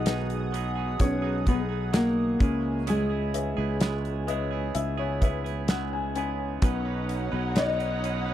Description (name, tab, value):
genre	pop ballad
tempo	64 BPM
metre	4/4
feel	straight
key	unclear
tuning	A4 = 440 Hz
part	nylon-string guitar	melody	0.0-8.3 s	G#3 to D#5	-30 LUFS	left 1 dB	slapback echo
part	felt-muted upright piano	accompaniment	0.0-8.3 s	B2 to G#5	-35 LUFS	left 8 dB	none
part	chorused pulse-width pad	sustained chords	0.0-8.3 s	G#4 to D#6	-38 LUFS	right 1 dB	none
part	direct-recorded clean electric guitar	arpeggios	0.0-8.3 s	B2 to B4	-36 LUFS	right 17 dB	none
part	sustaining fretless electric bass	bass	0.0-8.3 s	B1 to C#2	-30 LUFS	equal	wide subtle chorus
part	damped 70s drum kit	drums	0.1-8.3 s	hi-hat, kick drum, snare drum	-24 LUFS	equal	none
part	dark studio violin section	second line	6.6-8.3 s	D#4 to F#5	-36 LUFS	right 1 dB	none
room	light reverb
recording	dry, close 1970s-style studio recording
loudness	-25 LUFS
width	side -12 dB against mid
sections	0.0-8.3 A section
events	felt piano fill 3.8-6.6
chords	0.0 G#m7/B; 2.4 C#m7; 6.6 Badd9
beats	0.06 1.00 1.94 | 2.88 3.81 4.75 5.69 | 6.63 7.56